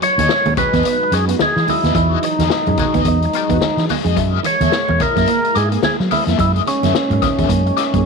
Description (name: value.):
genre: funk.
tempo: 108 BPM.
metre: 4/4.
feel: swing 60% on 16ths.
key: unclear.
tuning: A4 = 439 Hz.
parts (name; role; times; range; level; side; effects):
percussive tonewheel organ; melody; 0.0-8.1 s; C#4 to C#5; -18 LUFS; equal; slow rotary speaker.
overdriven electric guitar; accompaniment; 0.0-8.0 s; F#4 to E5; -24 LUFS; left 15 dB; wah, tremolo.
soft string machine; sustained chords; 0.0-8.1 s; F#3 to E4; -26 LUFS; right 1 dB; ensemble chorus.
electric guitar through a small old amp; riff; 0.0-8.0 s; E3 to B3; -24 LUFS; right 16 dB; none.
vintage drum kit; drums; 0.0-8.0 s; hi-hat, kick drum, snare drum; -22 LUFS; left 6 dB; none.
fingered electric bass; bass; 0.2-8.0 s; D#2 to F#3; -18 LUFS; right 1 dB; none.
congas; percussion; 0.2-7.6 s; none; -25 LUFS; right 11 dB; none.
room: small room ambience.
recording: 1960s-style stereo with parts hard left and right.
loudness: -14 LUFS.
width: side -4 dB against mid.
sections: 0.0-8.1 A section.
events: none.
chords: 0.0 Emaj9; 4.2 F#9.